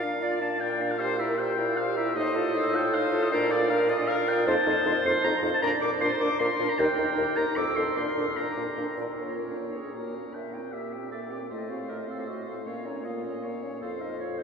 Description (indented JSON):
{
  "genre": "quick classical-period movement for wind quintet",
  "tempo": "155 BPM",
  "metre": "3/4",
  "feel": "straight",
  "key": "Bb major, Bb minor from 9.2 s",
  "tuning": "A4 = 441 Hz",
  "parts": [
    { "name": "silver concert flute", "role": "melody", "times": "0.0-14.4 s", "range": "A4 to G5", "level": "-34 LUFS", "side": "left 4 dB", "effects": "none" },
    { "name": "clear oboe", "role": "second line", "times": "0.0-14.4 s", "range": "Bb4 to D6", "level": "-30 LUFS", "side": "left 2 dB", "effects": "none" },
    { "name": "warm French horn", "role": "accompaniment", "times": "0.0-14.4 s", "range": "A3 to G4", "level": "-33 LUFS", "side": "equal", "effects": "none" },
    { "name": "dark bassoon", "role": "bass", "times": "0.0-14.4 s", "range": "Eb2 to Bb2", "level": "-30 LUFS", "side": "right 2 dB", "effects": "none" },
    { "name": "mellow clarinet", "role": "accompaniment", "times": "0.2-14.4 s", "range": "Db4 to D5", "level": "-34 LUFS", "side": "right 5 dB", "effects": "none" }
  ],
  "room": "wet cathedral reverb, RT60 6.7 s",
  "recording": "heard from further back in the room",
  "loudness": "-25 LUFS",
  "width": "side -6 dB against mid",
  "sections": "0.0-9.2 A section; 9.2-14.4 A section",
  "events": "none",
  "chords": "0.0 Bb; 1.0 C7/Bb; 2.2 F7/A; 3.3 Bb; 4.5 F7; 5.6 Bb; 6.8 Eb; 7.6 F7; 8.0 Bb; 9.2 Bbm; 10.3 C7/Bb; 11.5 F7/A; 12.7 Bbm; 13.8 F5"
}